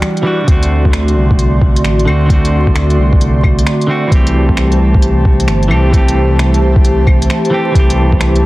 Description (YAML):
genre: future garage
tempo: 132 BPM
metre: 4/4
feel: swing 65% on 16ths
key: A dorian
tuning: A4 = 440 Hz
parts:
  - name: clean electric guitar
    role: accompaniment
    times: 0.0-8.5 s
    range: D3 to G4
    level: -15 LUFS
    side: right 1 dB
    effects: vintage 12-bit sampler grit, sidechain pumping, tape echo
  - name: airy breathy pad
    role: sustained chords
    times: 0.0-8.5 s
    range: F#4 to C6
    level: -18 LUFS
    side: left 1 dB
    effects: chorus, sidechain pumping
  - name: organic electronic drum kit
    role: drums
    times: 0.0-8.4 s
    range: claves, finger snaps, hi-hat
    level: -21 LUFS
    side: left 1 dB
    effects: soft clipping on snare
  - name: dark detuned saw bass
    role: bass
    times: 0.5-8.5 s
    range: G1 to D2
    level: -12 LUFS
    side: equal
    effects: sidechain pumping
  - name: electronic kick drum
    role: drums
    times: 0.5-8.2 s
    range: none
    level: -12 LUFS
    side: equal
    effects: overdrive
room: little or no reverb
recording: dense, heavily limited modern master, vinyl crackle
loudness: -9 LUFS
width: side -18 dB against mid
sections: 0.0-8.5 A section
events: none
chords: 0.5 D7; 4.1 Am7